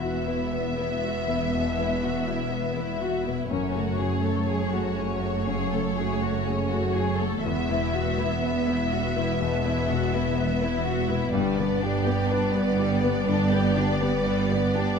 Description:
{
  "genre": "cinematic, emotional film score for orchestra",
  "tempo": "61 BPM",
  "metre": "4/4",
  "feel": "rubato",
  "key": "unclear",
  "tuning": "A4 = 440 Hz",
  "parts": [
    { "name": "dark studio violin section", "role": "melody", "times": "0.0-15.0 s", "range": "C#5 to E5", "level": "-32 LUFS", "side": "left 3 dB", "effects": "none" },
    { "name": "warm studio violin section", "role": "second line", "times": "0.0-15.0 s", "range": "G3 to A4", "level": "-32 LUFS", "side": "left 3 dB", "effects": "none" },
    { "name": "clear grand piano", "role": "accompaniment", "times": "0.0-15.0 s", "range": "E2 to B4", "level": "-30 LUFS", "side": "left 2 dB", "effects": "none" },
    { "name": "warm studio viola section", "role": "accompaniment", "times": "0.0-15.0 s", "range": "A3 to B3", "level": "-34 LUFS", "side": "right 6 dB", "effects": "none" },
    { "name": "concert harp", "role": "arpeggios", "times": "0.0-15.0 s", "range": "E2 to B4", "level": "-33 LUFS", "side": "left 10 dB", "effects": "none" },
    { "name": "warm studio cello section", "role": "bass", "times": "0.0-15.0 s", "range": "E2 to G2", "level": "-31 LUFS", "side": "right 4 dB", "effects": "none" },
    { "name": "warm studio double bass section", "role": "bass", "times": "0.0-15.0 s", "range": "E1 to G1", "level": "-30 LUFS", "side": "right 5 dB", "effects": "none" }
  ],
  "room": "light reverb",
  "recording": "none",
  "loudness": "-23 LUFS",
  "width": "side -6 dB against mid",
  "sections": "0.0-15.0 A section",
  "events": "none",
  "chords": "0.0 Esus2; 3.5 F#madd9; 7.4 Esus2; 11.3 G",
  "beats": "0.52 1.53 2.52 | 3.51 4.49 5.47 6.46 | 7.45 8.43 9.40 10.37 | 11.34 12.30 13.27 14.26"
}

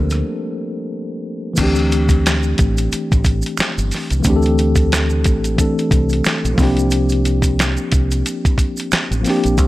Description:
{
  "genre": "R&B, neo-soul",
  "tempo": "90 BPM",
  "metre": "4/4",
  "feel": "swing 57% on 16ths",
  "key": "D minor",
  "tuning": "A4 = 440 Hz",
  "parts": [
    { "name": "mellow tine electric piano", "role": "accompaniment", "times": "0.0-9.7 s", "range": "E3 to A4", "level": "-19 LUFS", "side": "left 1 dB", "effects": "fast stereo tremolo" },
    { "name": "deep dub fingered electric bass", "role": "bass", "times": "0.0-9.7 s", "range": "G1 to D2", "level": "-18 LUFS", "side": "equal", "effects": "none" },
    { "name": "dusty soul sampler-style drum kit", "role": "drums", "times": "0.1-9.7 s", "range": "crash cymbal, hi-hat, kick drum, rim click, snare drum", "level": "-18 LUFS", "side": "equal", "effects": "none" },
    { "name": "maracas and finger snaps", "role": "percussion", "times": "0.1-9.7 s", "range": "none", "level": "-30 LUFS", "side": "right 4 dB", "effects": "none" }
  ],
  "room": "light reverb",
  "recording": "none",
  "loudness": "-14 LUFS",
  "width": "side -17 dB against mid",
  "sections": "0.0-1.6 A section; 1.6-9.7 B section",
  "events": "tine electric piano solo 0.0-1.6; break 0.2-1.6",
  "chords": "0.0 C9sus4; 1.6 D9sus4; 6.6 C9sus4",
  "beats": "0.25 0.91 | 1.58 2.25 2.91 3.58 | 4.25 4.91 5.58 6.25 | 6.91 7.58 8.25 8.91 | 9.58"
}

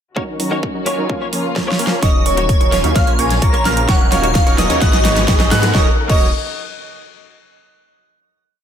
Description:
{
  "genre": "EDM, festival progressive house",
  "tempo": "129 BPM",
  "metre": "4/4",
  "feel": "straight",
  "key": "Eb minor",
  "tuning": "A4 = 441 Hz",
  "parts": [
    { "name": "direct-recorded clean electric guitar", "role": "accompaniment", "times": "0.2-6.3 s", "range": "Bb3 to Eb5", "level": "-25 LUFS", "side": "left 1 dB", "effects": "ensemble chorus, sidechain pumping, ping-pong delay" },
    { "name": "warm studio string section", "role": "sustained chords", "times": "0.2-6.0 s", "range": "Cb3 to Gb4", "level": "-28 LUFS", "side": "left 3 dB", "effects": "sidechain pumping, low-pass filter" },
    { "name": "supersaw stab", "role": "riff", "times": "0.2-6.3 s", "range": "F3 to Gb5", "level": "-22 LUFS", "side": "right 1 dB", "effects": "sidechain pumping, low-pass filter, ping-pong delay" },
    { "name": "electronic kick drum", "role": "drums", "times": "0.2-6.2 s", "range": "none", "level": "-16 LUFS", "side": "equal", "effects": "high-pass filter on kick, high-pass filter on room" },
    { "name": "big-room dance drum kit", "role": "drums", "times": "0.4-6.2 s", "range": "crash cymbal, hi-hat, snare drum", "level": "-21 LUFS", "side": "equal", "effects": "none" },
    { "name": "airy dreamy lead", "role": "melody", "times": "2.0-6.3 s", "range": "Db5 to Bb5", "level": "-20 LUFS", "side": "equal", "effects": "chorus, ping-pong delay" },
    { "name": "dark concert grand piano", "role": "arpeggios", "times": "2.0-6.3 s", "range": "Db6 to Gb6", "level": "-24 LUFS", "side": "right 3 dB", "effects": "sidechain pumping, low-pass filter, ping-pong delay" },
    { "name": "wide detuned saw bass", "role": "bass", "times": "2.0-6.3 s", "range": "Eb1 to Ab2", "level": "-20 LUFS", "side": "equal", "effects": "chorus, sidechain pumping" },
    { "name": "riser", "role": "sound effects", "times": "4.0-5.7 s", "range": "none", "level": "-26 LUFS", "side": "equal", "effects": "none" }
  ],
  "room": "light reverb, digital ambience",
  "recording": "none",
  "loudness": "-13 LUFS",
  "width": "side -9 dB against mid",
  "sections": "0.2-2.0 intro; 2.0-5.7 build; 5.7-7.6 final chord",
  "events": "filter sweep on string section 0.2-2.0; drum fill 1.6-2.0, 2.0-5.7; build-up 2.0-5.7; filter sweep on supersaw synth 2.0-5.7; riser 4.0-5.7",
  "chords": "0.2 Ebm7; 1.1 Bbm; 2.0 Ebm7; 3.0 Bbm; 3.9 Ebm7; 4.8 Abm; 5.7 Ebm7",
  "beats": "| 0.17 0.63 1.09 1.56 | 2.02 2.49 2.96 3.42 | 3.89 4.35 4.82 5.28 | 5.75 6.21"
}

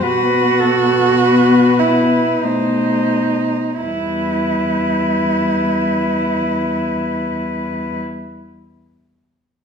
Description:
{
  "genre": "classical, lyrical piece for cello ensemble",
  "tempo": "42-53 BPM",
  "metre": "3/4",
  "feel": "rubato",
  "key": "E minor",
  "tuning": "A4 = 439 Hz",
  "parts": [
    { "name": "warm cello", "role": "melody", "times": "0.0-8.0 s", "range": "A4 to C5", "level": "-22 LUFS", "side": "left 8 dB", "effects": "none" },
    { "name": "warm cello", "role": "second line", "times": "0.0-8.0 s", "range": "D#4 to F#4", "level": "-18 LUFS", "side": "right 5 dB", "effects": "none" },
    { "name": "dark cello", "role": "accompaniment", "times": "0.0-8.0 s", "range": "G3 to B3", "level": "-22 LUFS", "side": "left 4 dB", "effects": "none" },
    { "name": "dark cello", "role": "bass", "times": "0.0-8.0 s", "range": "E2 to B2", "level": "-20 LUFS", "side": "left 1 dB", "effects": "none" }
  ],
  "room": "wet recital hall reverb, RT60 1.3 s",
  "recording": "none",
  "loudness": "-14 LUFS",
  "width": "side -6 dB against mid",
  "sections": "0.0-3.8 A section; 3.8-7.9 B section",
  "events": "slowing down 0.0-3.8",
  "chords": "0.0 B7sus4; 2.4 B7b9; 3.8 Em",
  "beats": "| 0.02 1.19 2.44 | 3.80 5.14 6.51"
}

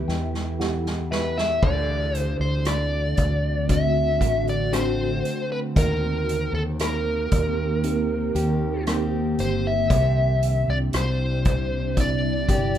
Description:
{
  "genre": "pop ballad",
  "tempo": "58 BPM",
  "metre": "4/4",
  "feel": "straight",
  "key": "unclear",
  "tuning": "A4 = 437 Hz",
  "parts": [
    { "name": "biting lead guitar", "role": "melody", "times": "0.0-12.8 s", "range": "A4 to E5", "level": "-26 LUFS", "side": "equal", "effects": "overdrive" },
    { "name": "tine electric piano", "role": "accompaniment", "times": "0.0-12.8 s", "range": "C3 to G5", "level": "-32 LUFS", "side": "right 2 dB", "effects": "medium stereo tremolo" },
    { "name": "ethereal airy pad", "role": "sustained chords", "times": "0.0-12.8 s", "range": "C3 to A4", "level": "-29 LUFS", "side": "equal", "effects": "ensemble chorus, built-in reverb, phaser" },
    { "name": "fretless electric bass", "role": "bass", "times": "0.0-12.8 s", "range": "G1 to E2", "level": "-26 LUFS", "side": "equal", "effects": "wide subtle chorus" },
    { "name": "soft-mallet drum kit", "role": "drums", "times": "0.1-12.8 s", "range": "crash cymbal, hi-hat, kick drum, rim click, snare drum", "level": "-25 LUFS", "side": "equal", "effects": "none" },
    { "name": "fingerpicked steel-string acoustic guitar", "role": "arpeggios", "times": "1.6-12.8 s", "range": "C3 to G4", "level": "-31 LUFS", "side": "left 2 dB", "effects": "none" }
  ],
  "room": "light reverb",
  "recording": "rough home demo mix",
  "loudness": "-21 LUFS",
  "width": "side -10 dB against mid",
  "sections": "0.0-1.6 A section; 1.6-12.8 B section",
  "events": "drum fill 0.0-1.6; tine electric piano fill 0.0-1.6",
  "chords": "0.0 Em; 1.6 D7; 5.8 Eb6; 9.9 Cadd9",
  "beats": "0.59 | 1.62 2.66 3.69 4.73 | 5.76 6.80 7.83 8.87 | 9.90 10.94 11.97"
}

